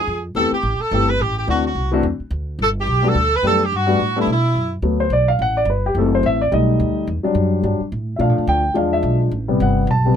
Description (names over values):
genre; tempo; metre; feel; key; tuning
jazz, big band swing; 214 BPM; 4/4; swing 60% on 8ths; G major; A4 = 442 Hz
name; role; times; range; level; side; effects
warm saxophone section; melody; 0.0-4.7 s; E4 to B4; -19 LUFS; right 1 dB; none
upright bass; bass; 0.0-10.2 s; F#1 to B2; -20 LUFS; right 1 dB; none
warm grand piano; accompaniment; 0.4-10.2 s; C3 to A5; -18 LUFS; left 2 dB; none
room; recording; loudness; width
little or no reverb; close, detailed microphones; -16 LUFS; side -8 dB against mid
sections
0.0-4.8 A section; 4.8-10.2 B section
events
grand piano solo 4.8-10.2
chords
0.4 Am7; 1.5 D9; 2.6 Gmaj7; 6.0 F#m7b5; 6.5 B7alt; 7.1 Em7; 8.2 Bm7b5; 8.8 E7b9; 9.3 Am7